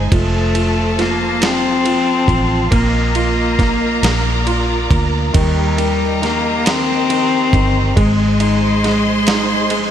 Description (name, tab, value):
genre	six-eight pop ballad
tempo	46 BPM (dotted quarters)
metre	6/8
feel	straight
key	Eb major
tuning	A4 = 440 Hz
part	clear baby grand piano	accompaniment	0.0-9.9 s	Eb3 to Ab5	-21 LUFS	right 2 dB	none
part	clear studio string section	sustained chords	0.0-9.9 s	F4 to C6	-22 LUFS	left 1 dB	none
part	vintage muted fingered electric bass	bass	0.0-9.9 s	F1 to Eb2	-19 LUFS	right 1 dB	none
part	clear cello	melody	0.1-9.9 s	G3 to C4	-18 LUFS	left 3 dB	slapback echo, analog delay
part	dusty soul sampler-style drum kit	drums	0.1-9.9 s	kick drum, ride cymbal, snare drum	-20 LUFS	right 1 dB	none
room	light reverb, small room reverb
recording	none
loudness	-13 LUFS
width	side -9 dB against mid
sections	0.0-9.9 A section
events	none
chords	0.1 F; 2.7 Bbsus4; 4.0 Bb; 5.4 Eb; 8.0 Ab